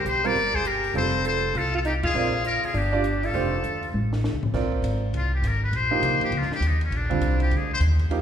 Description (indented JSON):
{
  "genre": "jazz, small-group swing and bop",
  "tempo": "201 BPM",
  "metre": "4/4",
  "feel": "swing 62% on 8ths",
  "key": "unclear",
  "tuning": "A4 = 439 Hz",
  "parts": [
    { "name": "trumpet with metal mute", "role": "melody", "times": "0.0-7.8 s", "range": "Db4 to D5", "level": "-26 LUFS", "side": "left 4 dB", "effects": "none" },
    { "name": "breathy alto saxophone", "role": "second line", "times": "0.0-3.9 s", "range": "D4 to Bb4", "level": "-29 LUFS", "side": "right 1 dB", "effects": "none" },
    { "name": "upright bass", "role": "bass", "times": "0.0-8.2 s", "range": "F1 to F2", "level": "-25 LUFS", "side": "equal", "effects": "none" },
    { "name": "compact cocktail drum kit", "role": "drums", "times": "0.1-8.2 s", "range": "crash cymbal, hi-hat, kick drum, ride cymbal, snare drum, toms", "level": "-34 LUFS", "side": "left 1 dB", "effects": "none" },
    { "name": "clear baby grand piano", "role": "accompaniment", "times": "0.2-8.2 s", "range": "D3 to D5", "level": "-29 LUFS", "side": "right 4 dB", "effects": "none" }
  ],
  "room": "wet concert hall reverb, RT60 2.1 s",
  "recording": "recorded in a church or concert hall",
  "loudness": "-21 LUFS",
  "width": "side -9 dB against mid",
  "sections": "0.0-4.5 A section; 4.5-8.2 B section",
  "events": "band accent 2.0; drum fill 3.9-4.5; muted trumpet solo 4.5-8.2",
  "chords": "0.0 C5; 1.0 Fadd9; 2.1 Bb9; 2.7 G5; 3.3 F9; 4.5 Bb9; 5.7 Eb9; 6.9 Bbadd9"
}